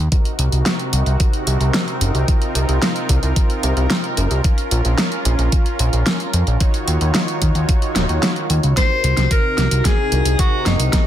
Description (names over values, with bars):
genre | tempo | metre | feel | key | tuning
synthwave | 111 BPM | 4/4 | straight | unclear | A4 = 440 Hz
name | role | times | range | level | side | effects
fat analog bass | bass | 0.0-10.9 s | Eb1 to F2 | -17 LUFS | equal | none
soft supersaw | sustained chords | 0.1-11.1 s | C3 to Db5 | -24 LUFS | right 1 dB | sidechain pumping, low-pass filter
electronic kick drum | drums | 0.1-11.0 s | none | -17 LUFS | equal | overdrive
pop drum kit | drums | 0.1-11.0 s | hi-hat, snare drum | -21 LUFS | equal | overdrive
warm tenor saxophone | melody | 8.8-11.1 s | Eb4 to C5 | -20 LUFS | left 2 dB | tape echo
room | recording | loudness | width
light reverb, digital ambience | dense, heavily limited modern master | -15 LUFS | side -11 dB against mid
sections
0.0-8.8 A section; 8.8-11.1 B section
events
drum fill 8.8-11.1; filter sweep on supersaw synth 8.8-11.1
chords
0.1 Cm7b5; 4.4 Bbm; 6.6 Ebm7; 8.8 Cm7b5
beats
| 0.12 0.66 1.20 1.74 | 2.28 2.82 3.36 3.90 | 4.44 4.99 5.53 6.07 | 6.61 7.15 7.69 8.23 | 8.77 9.31 9.85 10.39 | 10.93